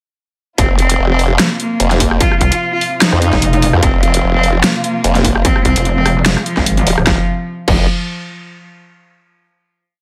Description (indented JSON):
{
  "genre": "heavy wobble dubstep",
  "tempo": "148 BPM",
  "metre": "4/4",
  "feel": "swing 54% on 16ths, half-time",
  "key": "unclear",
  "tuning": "A4 = 436 Hz",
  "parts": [
    { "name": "warm cello", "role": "melody", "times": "0.6-7.8 s", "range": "F3 to F4", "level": "-21 LUFS", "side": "equal", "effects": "vintage 12-bit sampler grit, digital delay" },
    { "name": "dark studio string section", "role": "sustained chords", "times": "0.6-7.3 s", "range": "C3 to F4", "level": "-26 LUFS", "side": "equal", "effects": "sidechain pumping" },
    { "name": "formant-sweep wobble bass", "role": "bass", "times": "0.6-7.9 s", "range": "Eb1 to F2", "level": "-16 LUFS", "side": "equal", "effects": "chorus, overdrive" },
    { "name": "dubstep drum kit", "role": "drums", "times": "0.6-7.8 s", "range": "crash cymbal, hi-hat, rim click, snare drum", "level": "-19 LUFS", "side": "equal", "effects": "studio reverb" },
    { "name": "electronic kick drum", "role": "drums", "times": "0.6-7.8 s", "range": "none", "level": "-18 LUFS", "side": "equal", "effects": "distortion, studio reverb" },
    { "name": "pulsing pluck wobble bass", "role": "bass", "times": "2.4-7.1 s", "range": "Eb1 to C2", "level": "-16 LUFS", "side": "equal", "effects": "chorus, overdrive" }
  ],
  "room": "little or no reverb",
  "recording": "none",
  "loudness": "-13 LUFS",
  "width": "mono",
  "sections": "0.6-7.1 drop; 7.1-8.7 final chord",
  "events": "drop 0.6-7.1",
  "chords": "0.6 F5"
}